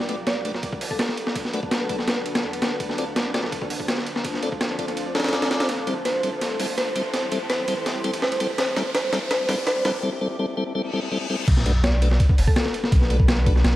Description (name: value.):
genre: drum and bass, jungle.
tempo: 166 BPM.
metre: 4/4.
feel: straight.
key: B phrygian.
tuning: A4 = 440 Hz.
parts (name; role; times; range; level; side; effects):
granular cloud pad; sustained chords; 0.0-13.8 s; D4 to D5; -31 LUFS; equal; built-in reverb, vintage 12-bit sampler grit.
soft dub sub bass; bass; 0.0-13.8 s; D1 to F2; -25 LUFS; equal; high-pass filter.
breakbeat sampler-style drum kit; drums; 0.0-13.7 s; crash cymbal, hi-hat, kick drum, ride cymbal, snare drum; -23 LUFS; equal; high-pass filter on cymbals, high-pass filter on kick, high-pass filter on snare, high-pass filter on hats, analog delay.
riser, reverse cymbal and sub drop; sound effects; 3.8-12.9 s; none; -36 LUFS; left 1 dB; none.
tonewheel organ; stabs; 0.1-13.5 s; G3 to D5; -29 LUFS; left 2 dB; slow rotary speaker, analog delay.
mallet-like synth pluck; melody; 0.3-1.1, 6.1-12.6 s; A4 to D5; -27 LUFS; equal; chorus, analog delay.
room: wet spring reverb, RT60 1.2 s, digital ambience.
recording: echo-heavy mix, vinyl crackle.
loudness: -21 LUFS.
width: side -15 dB against mid.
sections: 0.0-11.5 A section; 11.5-13.8 B section.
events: build-up 0.0-11.5; riser 3.8-10.0; drum fill 5.7-10.0; break 10.0-11.5; reverse cymbal 10.9-11.5; drop 11.5-13.8; impact 11.5-12.9.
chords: 0.0 Bm7; 2.8 Dm7; 5.7 Am7; 8.6 Gm7; 11.5 Bm7.